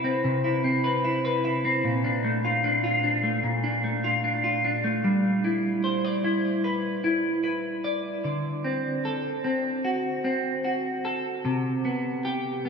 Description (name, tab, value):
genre	dream pop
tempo	75 BPM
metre	4/4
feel	straight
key	G major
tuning	A4 = 441 Hz
part	semi-hollow electric guitar	solo	0.0-12.7 s	Bb2 to D5	-24 LUFS	equal	analog chorus, ping-pong delay
room	wet cathedral reverb, RT60 5.3 s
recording	dreamy mix soaked in reverb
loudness	-24 LUFS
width	side -5 dB against mid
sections	0.0-5.0 A section; 5.0-12.7 B section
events	none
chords	0.0 Cmaj7; 1.8 Bbmaj7; 5.0 G6; 8.2 D7; 11.4 Cmaj7(no3)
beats	0.25 1.05 | 1.85 2.65 3.45 4.25 | 5.05 5.85 6.65 7.45 | 8.25 9.05 9.85 10.65 | 11.45 12.25